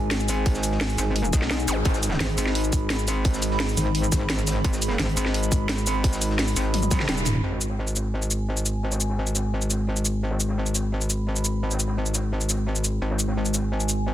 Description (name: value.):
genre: dark technical drum and bass.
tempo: 172 BPM.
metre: 4/4.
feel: straight.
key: G# minor.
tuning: A4 = 441 Hz.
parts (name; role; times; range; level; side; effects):
dark analog pad; sustained chords; 0.0-14.1 s; G#3 to B5; -31 LUFS; equal; chorus, phaser, sidechain pumping.
metallic wobble bass; bass; 0.0-14.1 s; D#1 to B1; -25 LUFS; equal; chorus, tube saturation.
crunchy breakbeat drum kit; drums; 0.1-14.1 s; hi-hat, snare drum; -38 LUFS; equal; none.
drum and bass drum kit; drums; 0.1-14.0 s; cabasa, hi-hat, snare drum, toms; -27 LUFS; equal; none.
electronic kick drum; drums; 0.5-7.0 s; none; -23 LUFS; equal; none.
zap; sound effects; 1.7-1.8 s; none; -33 LUFS; equal; none.
metallic wobble bass; bass; 2.2-5.2 s; G#1; -24 LUFS; equal; chorus.
room: light reverb, digital ambience.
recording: dense, heavily limited modern master.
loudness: -22 LUFS.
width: side -12 dB against mid.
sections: 0.0-7.4 A section; 7.4-14.1 B section.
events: drum fill 6.7-7.4; band accent 7.1; filter sweep on analog synth pad 7.4-14.1.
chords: 0.0 G#5.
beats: 0.11 | 0.46 0.81 1.16 1.51 | 1.85 2.20 2.55 2.90 | 3.25 3.60 3.95 4.30 | 4.64 4.99 5.34 5.69 | 6.04 6.39 6.74 7.09 | 7.44 7.79 8.13 8.48 | 8.83 9.18 9.53 9.88 | 10.23 10.58 10.93 11.27 | 11.62 11.97 12.32 12.67 | 13.02 13.37 13.71 14.06.